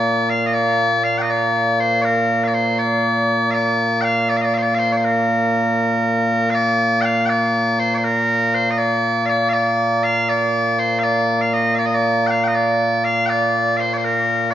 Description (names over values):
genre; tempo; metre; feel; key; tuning
scottish traditional, Scottish pipe music; 80 BPM (dotted quarters); 6/8; straight; Bb major; A4 = 435 Hz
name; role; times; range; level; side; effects
loud bright bagpipes; solo; 0.0-14.5 s; Bb2 to G5; -16 LUFS; equal; none
room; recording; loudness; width
wet recital hall reverb, RT60 1.6 s; nothing above 7.5 kHz; -16 LUFS; side -11 dB against mid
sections
0.0-6.5 A section; 6.5-14.5 A section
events
none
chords
none